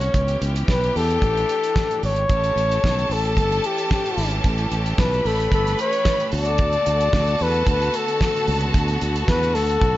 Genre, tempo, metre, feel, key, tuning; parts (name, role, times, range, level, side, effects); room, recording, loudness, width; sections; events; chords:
disco; 112 BPM; 4/4; straight; A4 = 441 Hz
breathy flugelhorn; melody; 0.0-10.0 s; G4 to D5; -22 LUFS; left 2 dB; slapback echo
clear studio string section; sustained chords; 0.0-10.0 s; D3 to G4; -30 LUFS; equal
fingered electric bass; bass; 0.0-10.0 s; G1 to E2; -23 LUFS; right 1 dB
warm soul drum kit; drums; 0.0-9.9 s; hi-hat, kick drum, snare drum; -24 LUFS; right 1 dB
rich studio violin section; second line; 2.3-10.0 s; A4 to B5; -28 LUFS; right 1 dB
light reverb, studio ambience; nothing above 7.6 kHz; -18 LUFS; side -15 dB against mid
0.0-2.3 A section; 2.3-10.0 B section
0.1 C#m7b5; 1.2 A7sus4; 2.3 A7; 6.3 D6